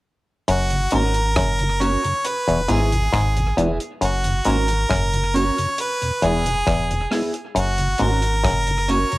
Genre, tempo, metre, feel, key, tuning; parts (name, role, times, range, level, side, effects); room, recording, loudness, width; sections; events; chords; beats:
roots reggae; 68 BPM; 4/4; straight; F# mixolydian; A4 = 440 Hz
bright harmonica; melody; 0.5-9.2 s; F#4 to C#5; -22 LUFS; right 1 dB; cassette tape, tape echo
muted clav; riff; 0.5-8.7 s; E2 to G#2; -22 LUFS; left 2 dB; overdrive, cassette tape
soft dub sub bass; bass; 0.5-9.0 s; E1 to G#1; -23 LUFS; equal
deep reggae drum kit; drums; 0.5-9.2 s; hi-hat, kick drum, rim click; -27 LUFS; equal; cassette tape, tape echo
mellow tonewheel organ; accompaniment; 0.7-9.2 s; E2 to F#4; -27 LUFS; equal; slow rotary speaker, cassette tape
electric guitar at the edge of break-up; accompaniment; 0.9-9.2 s; B3 to A#4; -26 LUFS; right 3 dB; harmonic tremolo, cassette tape, tape echo, plate reverb
light reverb; home recording on cassette; -18 LUFS; side -19 dB against mid
0.5-9.2 A section
0.5 F#; 2.2 E; 4.0 F#; 5.8 E; 7.6 F#
| 0.48 1.37 2.25 3.13 | 4.02 4.90 5.79 6.67 | 7.55 8.44